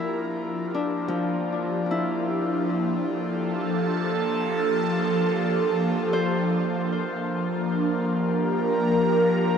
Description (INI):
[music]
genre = ambient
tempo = free time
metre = none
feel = none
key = Bb lydian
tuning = A4 = 441 Hz
[part]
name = airy breathy pad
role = sustained chords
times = 0.0-9.6 s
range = F3 to Bb4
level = -23 LUFS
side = equal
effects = chorus, phaser, shimmer reverb
[part]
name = Celtic harp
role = arpeggios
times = 0.0-8.1 s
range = F3 to C5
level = -30 LUFS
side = left 2 dB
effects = ping-pong delay, shimmer reverb
[part]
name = analog drone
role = drone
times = 7.0-9.6 s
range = Bb3 to Bb4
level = -28 LUFS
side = right 2 dB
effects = chorus
[sound]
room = wet huge ambient reverb, RT60 8.2 s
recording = in a vast, echoing space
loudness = -22 LUFS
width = side -7 dB against mid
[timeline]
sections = 0.0-6.7 A section; 6.7-9.6 B section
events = fade-in on analog synth pad 0.0-6.7; fade-in on harp 0.0-6.7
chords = 0.0 Bb6; 2.0 Gm9; 6.7 Bb6